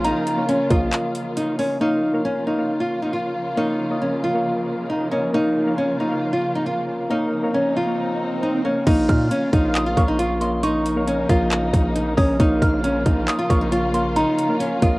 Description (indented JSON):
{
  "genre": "hip hop, trap",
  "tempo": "136 BPM",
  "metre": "4/4",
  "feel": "half-time",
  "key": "Bb minor",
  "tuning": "A4 = 440 Hz",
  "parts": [
    { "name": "nylon-string guitar", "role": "melody", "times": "0.0-15.0 s", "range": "Db4 to F4", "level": "-22 LUFS", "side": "equal", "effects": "cassette tape, plate reverb" },
    { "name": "soft synth bell", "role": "second line", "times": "0.0-0.5, 9.1-14.6 s", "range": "Bb5 to F6", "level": "-28 LUFS", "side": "right 1 dB", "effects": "chorus, cassette tape, analog delay, plate reverb" },
    { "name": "soft electric-piano-like synth keys", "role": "accompaniment", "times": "0.0-15.0 s", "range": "Bb3 to F5", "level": "-26 LUFS", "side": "left 1 dB", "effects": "chorus, cassette tape, plate reverb" },
    { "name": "dark symphonic string section", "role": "sustained chords", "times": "0.0-15.0 s", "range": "Db3 to F4", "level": "-28 LUFS", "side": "equal", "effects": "cassette tape, plate reverb" },
    { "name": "distorted 808-style bass", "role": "bass", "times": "0.0-0.9, 8.9-15.0 s", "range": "Bb1 to Bb2", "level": "-25 LUFS", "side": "equal", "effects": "distortion" },
    { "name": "trap drum kit", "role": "drums", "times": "0.0-1.7, 8.9-14.9 s", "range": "crash cymbal, handclaps, hi-hat, kick drum", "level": "-20 LUFS", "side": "equal", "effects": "cassette tape" },
    { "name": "swell", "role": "sound effects", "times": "7.5-8.9 s", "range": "none", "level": "-30 LUFS", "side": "right 1 dB", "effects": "none" }
  ],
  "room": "moderate booth ambience, RT60 0.2 s",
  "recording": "home recording on cassette",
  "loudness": "-18 LUFS",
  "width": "side -21 dB against mid",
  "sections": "0.0-1.8 A section; 1.8-8.9 B section; 8.9-15.0 A section",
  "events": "break 0.9-1.8; swell 7.5-8.9",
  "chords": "0.0 Bbm",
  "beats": "| 0.04 0.49 0.93 1.37 | 1.81 2.25 2.69 3.13 | 3.57 4.01 4.46 4.90 | 5.34 5.78 6.22 6.66 | 7.10 7.54 7.99 8.43 | 8.87 9.31 9.75 10.19 | 10.63 11.07 11.52 11.96 | 12.40 12.84 13.28 13.72 | 14.16 14.60"
}